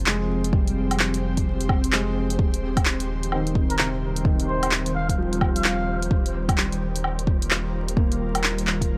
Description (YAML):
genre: future garage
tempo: 129 BPM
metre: 4/4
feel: swing 63% on 16ths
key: unclear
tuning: A4 = 440 Hz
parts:
  - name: ethereal airy pad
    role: sustained chords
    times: 0.0-9.0 s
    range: Eb3 to C5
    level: -32 LUFS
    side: equal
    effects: ensemble chorus, built-in reverb, sidechain pumping
  - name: warm sub bass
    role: bass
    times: 0.0-9.0 s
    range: Eb1 to F1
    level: -31 LUFS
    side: equal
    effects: sidechain pumping
  - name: felt-muted upright piano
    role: accompaniment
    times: 0.1-9.0 s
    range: C3 to Bb3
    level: -33 LUFS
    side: equal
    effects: vintage 12-bit sampler grit, sidechain pumping, analog delay
  - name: deep house drum kit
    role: drums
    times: 0.1-8.9 s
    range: handclaps, hi-hat, woodblock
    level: -27 LUFS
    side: equal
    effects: none
  - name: electronic kick drum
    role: drums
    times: 0.5-8.9 s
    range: none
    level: -25 LUFS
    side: equal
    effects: none
  - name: wind-like tuned noise texture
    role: texture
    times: 4.4-9.0 s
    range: C5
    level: -43 LUFS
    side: equal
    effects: built-in reverb
  - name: trumpet with cup mute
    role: melody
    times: 3.7-6.0 s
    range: Bb4 to F5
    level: -32 LUFS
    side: equal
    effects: vintage 12-bit sampler grit, analog delay
room: light reverb, digital ambience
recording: dry, gritty hardware recording, vinyl crackle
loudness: -23 LUFS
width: mono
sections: 0.0-9.0 A section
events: none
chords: 0.0 Fmadd9; 2.4 Cm/Eb; 6.1 Ebadd9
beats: 0.07 | 0.53 1.00 1.46 1.93 | 2.39 2.86 3.32 3.79 | 4.25 4.72 5.18 5.65 | 6.11 6.58 7.04 7.51 | 7.97 8.44 8.90